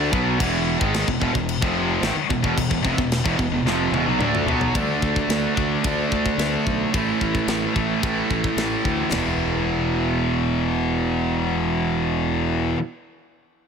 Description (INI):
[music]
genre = heavy metal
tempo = 110 BPM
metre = 4/4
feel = straight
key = E phrygian dominant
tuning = A4 = 440 Hz
[part]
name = distorted electric guitar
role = riff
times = 0.0-12.8 s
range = E2 to D4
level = -24 LUFS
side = right 10 dB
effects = distortion
[part]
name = heavy high-gain guitar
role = riff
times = 0.0-12.8 s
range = E2 to D4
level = -24 LUFS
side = left 12 dB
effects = distortion
[part]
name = thick fuzz guitar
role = riff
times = 0.0-4.7 s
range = E2 to D4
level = -27 LUFS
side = equal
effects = distortion
[part]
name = fuzz fingered electric bass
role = bass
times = 0.0-12.7 s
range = E1 to D2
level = -27 LUFS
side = equal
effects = overdrive
[part]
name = tight metal drum kit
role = drums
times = 0.1-9.2 s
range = crash cymbal, kick drum, ride cymbal, snare drum, toms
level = -26 LUFS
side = left 1 dB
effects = none
[sound]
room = light reverb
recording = none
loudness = -19 LUFS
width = side -6 dB against mid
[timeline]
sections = 0.0-4.7 A section; 4.7-9.1 B section; 9.1-13.5 C section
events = drum fill 3.7-4.7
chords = 0.0 E; 4.7 D5; 6.9 A5; 9.1 E5